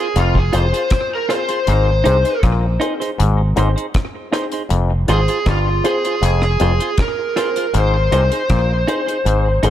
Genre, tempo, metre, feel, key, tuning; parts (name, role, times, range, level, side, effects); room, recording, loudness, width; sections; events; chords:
roots reggae; 79 BPM; 4/4; straight; F minor; A4 = 440 Hz
lead guitar through a small cranked amp; melody; 0.0-9.7 s; F4 to C5; -20 LUFS; equal; overdrive, tape echo
clean electric guitar; accompaniment; 0.0-9.7 s; Eb4 to C5; -24 LUFS; right 4 dB; tape echo
dark upright piano; stabs; 0.0-9.7 s; C4 to C5; -25 LUFS; left 4 dB
auto-wah clav; riff; 0.2-9.7 s; F2 to C3; -25 LUFS; left 5 dB
fingered electric bass; bass; 0.2-9.7 s; F1 to C2; -16 LUFS; equal
deep reggae drum kit; drums; 0.2-9.7 s; hi-hat, kick drum, rim click; -21 LUFS; equal; slapback echo
light reverb, small room ambience; -14 LUFS; side -11 dB against mid
0.0-9.7 A section
0.0 Fm; 1.7 Ab; 4.7 Fm; 7.7 Ab